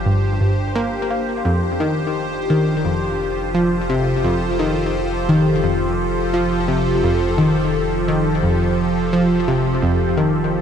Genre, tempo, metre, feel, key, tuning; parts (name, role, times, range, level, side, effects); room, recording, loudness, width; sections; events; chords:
ambient, sequencer-driven space music; 86 BPM; 4/4; straight; A4 = 440 Hz
evolving wavetable pad; sustained chords; 0.0-10.6 s; F3 to C5; -20 LUFS; equal; phaser, built-in reverb
round analog bass; bass; 0.0-10.6 s; F1 to G1; -29 LUFS; equal
analog pluck; riff; 0.1-10.3 s; F2 to Bb3; -19 LUFS; equal; chorus, ping-pong delay
moderate huge ambient reverb, RT60 8.0 s; dark, warm production; -16 LUFS; side -8 dB against mid
0.0-10.6 A section
0.0 Gm; 1.5 Fadd9